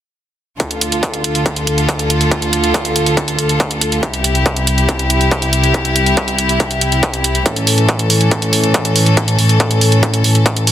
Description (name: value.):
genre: uplifting trance.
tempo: 140 BPM.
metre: 4/4.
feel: straight.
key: D minor.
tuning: A4 = 440 Hz.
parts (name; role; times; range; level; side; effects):
rich chamber string section; sustained chords; 0.6-10.7 s; C2 to A4; -14 LUFS; equal; sidechain pumping.
electronic hi-hat; drums; 0.6-10.7 s; none; -18 LUFS; right 2 dB; overdrive.
electronic kick drum; drums; 0.6-10.5 s; none; -19 LUFS; equal; distortion, overdrive, high-pass filter on kick.
room: studio reverb.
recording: dense, heavily limited modern master.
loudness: -12 LUFS.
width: side -11 dB against mid.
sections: 0.6-10.7 A section.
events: none.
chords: 0.6 Dm; 4.0 C; 7.5 A.